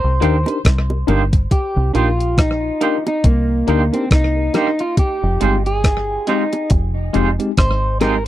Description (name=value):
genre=lovers rock reggae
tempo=69 BPM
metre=4/4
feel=swing 58% on 16ths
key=C minor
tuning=A4 = 438 Hz
part: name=electric guitar at the edge of break-up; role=melody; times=0.0-8.2 s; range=Bb3 to C5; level=-21 LUFS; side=equal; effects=tape echo
part: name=deep dub fingered electric bass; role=bass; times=0.0-8.3 s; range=F1 to Eb2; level=-18 LUFS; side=equal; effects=none
part: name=tine electric piano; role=accompaniment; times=0.2-8.2 s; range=Ab3 to Bb4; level=-20 LUFS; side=left 3 dB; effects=medium stereo tremolo
part: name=twangy electric guitar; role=stabs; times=0.2-8.1 s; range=Ab3 to C5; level=-21 LUFS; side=right 6 dB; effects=tremolo
part: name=crisp 8-bit digital drum machine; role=drums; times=0.2-8.2 s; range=hi-hat, kick drum, rim click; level=-16 LUFS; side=equal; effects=slapback echo
part: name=bongos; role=percussion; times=0.5-8.2 s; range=none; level=-24 LUFS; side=right 4 dB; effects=none
room=little or no reverb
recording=dry, close 1970s-style studio recording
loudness=-14 LUFS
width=side -13 dB against mid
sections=0.0-1.5 A section; 1.5-8.3 B section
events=clean electric guitar solo 1.5-8.3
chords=0.0 Cm7; 5.0 Fm7